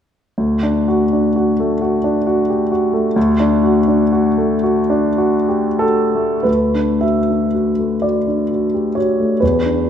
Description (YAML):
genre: classical, impressionist solo piano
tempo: 29-46 BPM (dotted quarters)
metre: 6/8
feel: rubato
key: D major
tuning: A4 = 441 Hz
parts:
  - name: warm concert grand piano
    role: solo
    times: 0.4-9.9 s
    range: D2 to E5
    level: -14 LUFS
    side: equal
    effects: none
room: moderate scoring stage reverb, RT60 2.0 s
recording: dark, warm production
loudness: -14 LUFS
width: side -8 dB against mid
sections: 0.4-6.5 A section; 6.5-9.9 B section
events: none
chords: 0.4 D